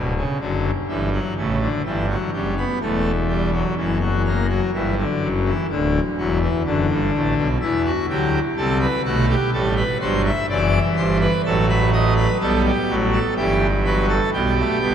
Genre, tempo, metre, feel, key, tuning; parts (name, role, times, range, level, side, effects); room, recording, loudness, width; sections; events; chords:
classical, baroque-style 4-part fugue for pipe organ; 62 BPM; 4/4; straight; E minor; A4 = 441 Hz
pipe organ, full organ; solo; 0.0-14.9 s; D1 to E5; -18 LUFS; equal
wet cathedral reverb, RT60 5.8 s; -18 LUFS; side -8 dB against mid
0.0-14.9 A section
0.0 Bm/D; 1.9 Em; 3.8 F#7; 5.7 Bm/D; 7.6 Em; 9.5 Am; 11.4 B7/A; 13.4 Em/G